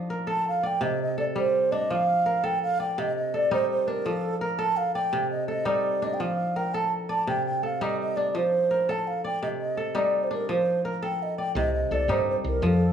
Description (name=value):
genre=west african traditional, West African string and xylophone music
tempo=112 BPM (dotted quarters)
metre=12/8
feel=straight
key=C dorian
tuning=A4 = 441 Hz
part: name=kora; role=arpeggios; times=0.0-12.9 s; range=C3 to D5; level=-29 LUFS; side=equal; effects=none
part: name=mellow baroque flute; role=melody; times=0.3-12.9 s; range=A4 to A5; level=-25 LUFS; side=right 2 dB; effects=none
part: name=woody fretless electric bass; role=bass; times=11.6-12.9 s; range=C2 to G2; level=-25 LUFS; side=equal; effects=none
room=moderate large studio reverb, RT60 1.1 s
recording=band playing live in one room, small room ambience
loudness=-24 LUFS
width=side -8 dB against mid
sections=0.0-11.6 A section; 11.6-12.9 A section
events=none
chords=0.0 F; 0.8 C5; 1.9 F; 3.0 Cm; 4.0 F; 5.1 Cm; 6.2 F; 7.3 Cm; 8.3 F; 9.4 Cm; 10.5 F; 11.6 Cm